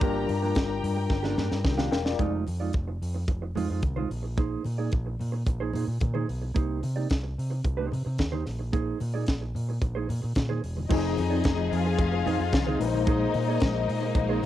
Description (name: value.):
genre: disco.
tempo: 110 BPM.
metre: 4/4.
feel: straight.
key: F dorian.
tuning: A4 = 443 Hz.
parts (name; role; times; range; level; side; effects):
mellow electric guitar; accompaniment; 0.0-14.5 s; F3 to D5; -32 LUFS; right 7 dB; none.
overdriven tine electric piano; accompaniment; 0.0-2.3, 10.9-14.5 s; Bb2 to G5; -30 LUFS; left 8 dB; medium tremolo.
clear studio string section; sustained chords; 0.0-2.2, 10.9-14.5 s; F3 to Bb5; -34 LUFS; equal; none.
overdriven fingered electric bass; bass; 0.0-14.5 s; E1 to C3; -30 LUFS; equal; none.
tight funk drum kit; drums; 0.0-14.5 s; crash cymbal, hi-hat, kick drum, snare drum; -27 LUFS; equal; cassette tape.
congas; percussion; 0.0-14.5 s; none; -38 LUFS; left 5 dB; none.
rich studio string section; second line; 10.9-14.5 s; Eb4 to F5; -32 LUFS; left 9 dB; plate reverb.
room: light reverb.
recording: home recording on cassette.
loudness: -25 LUFS.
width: side -13 dB against mid.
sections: 0.0-2.2 A section; 2.2-10.9 B section; 10.9-14.5 C section.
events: drum fill 1.1-2.2.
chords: 0.0 Gm7; 2.2 Fm7; 4.1 Bb9sus4; 6.6 Cm7; 8.5 Bb9sus4; 10.9 Fm7; 12.8 Bb9sus4.